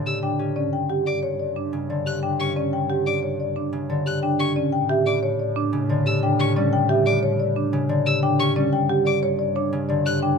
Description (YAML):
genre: classical, minimalist pattern music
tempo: 180 BPM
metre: 6/4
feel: straight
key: unclear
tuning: A4 = 440 Hz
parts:
  - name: marimba with medium mallets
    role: melody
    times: 0.0-10.4 s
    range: G4 to G5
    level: -25 LUFS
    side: left 8 dB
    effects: none
  - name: concert harp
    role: accompaniment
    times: 0.0-10.4 s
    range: C#3 to C#4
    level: -26 LUFS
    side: left 1 dB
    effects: none
  - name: rich double bass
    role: bass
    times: 0.0-10.4 s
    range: G2 to A2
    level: -29 LUFS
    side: right 1 dB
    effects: none
  - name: rich violin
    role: arpeggios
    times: 0.1-10.2 s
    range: C#6 to F#6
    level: -28 LUFS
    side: left 2 dB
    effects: none
  - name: marimba with medium mallets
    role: arpeggios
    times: 0.2-10.4 s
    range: C#4 to C#5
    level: -26 LUFS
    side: right 8 dB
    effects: none
room: light reverb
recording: minimal, uncompressed stereo recording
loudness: -20 LUFS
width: side -6 dB against mid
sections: 0.0-10.4 A section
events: none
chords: 0.0 A7sus4; 0.7 G5; 4.7 A7sus4; 8.7 G5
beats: 0.06 0.39 | 0.73 1.06 1.39 1.73 2.06 2.39 | 2.73 3.06 3.39 3.73 4.06 4.39 | 4.73 5.06 5.39 5.73 6.06 6.39 | 6.73 7.06 7.39 7.73 8.06 8.39 | 8.73 9.06 9.39 9.73 10.06